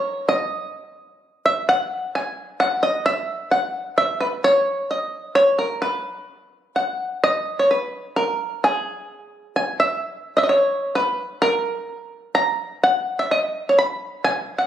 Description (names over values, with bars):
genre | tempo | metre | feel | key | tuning
musette | 129 BPM | 3/4 | straight | G# minor | A4 = 440 Hz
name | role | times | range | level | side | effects
bluegrass banjo | solo | 0.0-14.7 s | G#4 to B5 | -19 LUFS | equal | none
room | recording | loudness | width
moderate recital hall reverb, RT60 1.5 s | recorded on a phone in the room, club reverb, compression | -19 LUFS | side -10 dB against mid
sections
0.0-7.2 A section; 7.2-14.7 B section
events
none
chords
none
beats
| 0.29 0.75 1.21 | 1.67 2.14 2.60 | 3.06 3.51 3.97 | 4.43 4.88 5.34 | 5.81 6.28 6.75 | 7.22 7.69 8.16 | 8.62 9.09 9.55 | 10.01 10.47 10.94 | 11.40 11.87 12.35 | 12.82 13.29 13.76 | 14.23